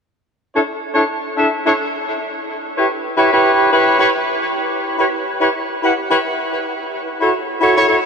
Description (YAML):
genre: glitch hop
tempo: 108 BPM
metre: 4/4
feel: swing 57% on 16ths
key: unclear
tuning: A4 = 438 Hz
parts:
  - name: warm horn section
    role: stabs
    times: 0.5-8.0 s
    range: D4 to F#5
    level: -14 LUFS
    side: equal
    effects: low-pass filter, tape echo
room: wet huge ambient reverb, RT60 8.2 s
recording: dreamy mix soaked in reverb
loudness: -15 LUFS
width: side -5 dB against mid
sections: 0.0-8.1 A section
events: none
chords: 0.0 Dsus2; 2.0 Em6; 4.3 C#m7b5; 6.5 F#m7